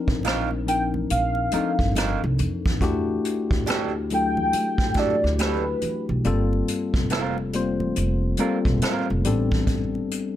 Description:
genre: R&B, neo-soul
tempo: 70 BPM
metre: 4/4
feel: swing 62% on 16ths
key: unclear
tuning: A4 = 440 Hz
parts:
  - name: mellow tine electric piano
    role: accompaniment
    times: 0.0-10.4 s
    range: F3 to C5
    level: -26 LUFS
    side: left 4 dB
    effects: none
  - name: upright bass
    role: bass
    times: 0.1-10.0 s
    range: E1 to F2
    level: -26 LUFS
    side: right 1 dB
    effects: none
  - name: vintage brush drum kit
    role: drums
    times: 0.1-10.4 s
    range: hi-hat, kick drum, rim click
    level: -26 LUFS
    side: equal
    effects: none
  - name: electric guitar through a small old amp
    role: second line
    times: 0.2-9.1 s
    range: C4 to Bb4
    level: -27 LUFS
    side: right 8 dB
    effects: none
  - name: congas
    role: percussion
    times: 0.2-10.1 s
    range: none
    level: -35 LUFS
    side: right 3 dB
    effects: none
  - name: warm velvety synth lead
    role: melody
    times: 0.7-6.1 s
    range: B4 to G5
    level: -24 LUFS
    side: equal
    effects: chorus
room: light reverb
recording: none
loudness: -21 LUFS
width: side -12 dB against mid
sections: 0.0-10.4 A section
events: none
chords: 0.0 Cm11; 2.8 Em11; 6.2 Gm11; 9.2 Am11

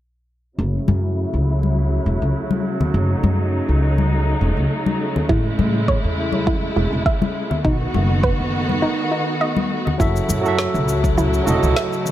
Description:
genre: sunset chillout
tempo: 102 BPM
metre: 4/4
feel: swing 54% on 16ths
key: F# dorian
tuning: A4 = 440 Hz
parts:
  - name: warm studio string section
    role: sustained chords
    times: 0.6-12.1 s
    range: C#3 to F#4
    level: -23 LUFS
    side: right 1 dB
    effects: low-pass filter
  - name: upright bass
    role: bass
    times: 0.6-11.7 s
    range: E1 to A2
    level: -19 LUFS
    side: equal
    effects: none
  - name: congas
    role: percussion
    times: 0.9-10.0 s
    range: none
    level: -24 LUFS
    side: left 4 dB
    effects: none
  - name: soft round pluck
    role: arpeggios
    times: 5.3-11.9 s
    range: D#4 to E5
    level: -25 LUFS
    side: right 2 dB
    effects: chorus, tape echo
  - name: electronic kick drum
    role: drums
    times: 5.3-11.1 s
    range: none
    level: -21 LUFS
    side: equal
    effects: none
  - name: barky tine electric piano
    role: accompaniment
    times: 10.0-12.1 s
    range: F#3 to E5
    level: -21 LUFS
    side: moving between left 3 dB and right 4 dB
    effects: auto-pan, tape echo
  - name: deep house drum kit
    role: drums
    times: 10.0-12.1 s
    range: shaker, snare drum, toms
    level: -24 LUFS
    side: right 1 dB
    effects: none
room: light reverb, studio reverb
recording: none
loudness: -17 LUFS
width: side -13 dB against mid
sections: 0.6-10.0 A section; 10.0-12.1 B section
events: filter sweep on string section 0.6-10.0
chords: 0.6 F#m7; 5.3 Amaj7; 7.6 B7; 10.0 F#m7

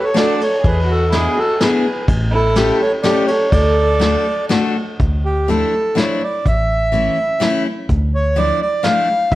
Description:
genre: musette waltz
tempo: 125 BPM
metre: 3/4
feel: straight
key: D major, D harmonic minor from 5.0 s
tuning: A4 = 440 Hz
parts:
  - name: accordion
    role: melody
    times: 0.0-9.4 s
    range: G4 to F5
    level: -18 LUFS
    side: right 1 dB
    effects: none
  - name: dark violin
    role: second line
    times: 0.0-4.5 s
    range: E4 to A4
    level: -20 LUFS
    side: right 1 dB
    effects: none
  - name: picked steel-string acoustic guitar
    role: accompaniment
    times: 0.1-9.1 s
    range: E3 to A4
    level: -20 LUFS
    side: left 4 dB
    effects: none
  - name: vintage brush drum kit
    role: drums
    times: 0.2-9.4 s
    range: hi-hat, kick drum, ride cymbal, snare drum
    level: -21 LUFS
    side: equal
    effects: none
  - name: woody fretless electric bass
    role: bass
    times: 0.6-9.4 s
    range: A1 to E2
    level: -18 LUFS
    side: equal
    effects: none
room: moderate recital hall reverb, RT60 1.4 s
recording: worn, warbling old tape, cassette tape, warbly pitch drift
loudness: -14 LUFS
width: side -16 dB against mid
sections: 0.0-5.0 A section; 5.0-9.4 B section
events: none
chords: 0.0 D; 0.6 E7; 2.1 A7; 3.5 D; 5.0 Dmadd9; 6.5 A; 7.9 Dmadd9

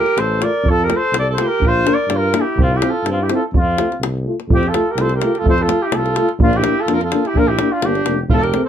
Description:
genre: balkan folk, Balkan brass band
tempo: 126 BPM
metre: 2/4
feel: straight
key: F major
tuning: A4 = 435 Hz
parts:
  - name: mellow trumpet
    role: melody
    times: 0.0-8.7 s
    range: F4 to D5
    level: -19 LUFS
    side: equal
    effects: none
  - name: clear alto saxophone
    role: second line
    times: 0.0-8.7 s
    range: C4 to Bb4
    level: -24 LUFS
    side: right 5 dB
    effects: none
  - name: mellow euphonium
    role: accompaniment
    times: 0.0-8.6 s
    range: C4 to F4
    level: -22 LUFS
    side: left 7 dB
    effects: none
  - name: warm euphonium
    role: accompaniment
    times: 0.0-8.6 s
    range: A3 to C4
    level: -25 LUFS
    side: right 6 dB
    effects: none
  - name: davul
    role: percussion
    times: 0.1-8.6 s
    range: none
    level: -19 LUFS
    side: equal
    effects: none
  - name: mellow tuba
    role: bass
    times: 0.2-8.5 s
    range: F1 to G2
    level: -21 LUFS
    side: equal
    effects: none
room: light reverb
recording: none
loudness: -14 LUFS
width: side -9 dB against mid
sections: 0.0-4.5 A section; 4.5-8.7 B section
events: none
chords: 0.0 Dm; 0.7 F; 1.6 Bb; 2.6 C; 3.5 F; 6.4 Bb

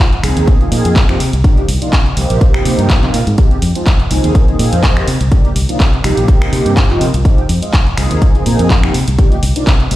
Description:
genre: filtered disco house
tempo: 124 BPM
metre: 4/4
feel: swing 55% on 16ths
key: F dorian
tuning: A4 = 440 Hz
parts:
  - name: fingered electric bass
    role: bass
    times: 0.0-10.0 s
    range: F1 to C3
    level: -15 LUFS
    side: equal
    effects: tube saturation, sidechain pumping, low-pass filter
  - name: punchy analog drum machine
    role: drums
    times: 0.0-10.0 s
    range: finger snaps, handclaps, hi-hat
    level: -20 LUFS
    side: equal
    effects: sidechain pumping on hats
  - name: mellow synth brass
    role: accompaniment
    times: 0.2-10.0 s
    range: F3 to Ab4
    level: -18 LUFS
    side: right 1 dB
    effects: chorus, phaser, sidechain pumping, low-pass filter
  - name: electronic kick drum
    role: drums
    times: 0.5-9.8 s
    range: none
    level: -11 LUFS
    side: equal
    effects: none
room: little or no reverb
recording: played on a big sound system in a bare room, stone room reverb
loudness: -10 LUFS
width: side -15 dB against mid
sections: 0.0-10.0 A section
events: none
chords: 0.0 Fm7; 1.2 Cm11; 2.2 Abmaj13 (rootless); 3.4 Fm9; 5.1 Cm11; 6.0 Eb69/Bb; 7.3 Fm9; 8.9 Cm11

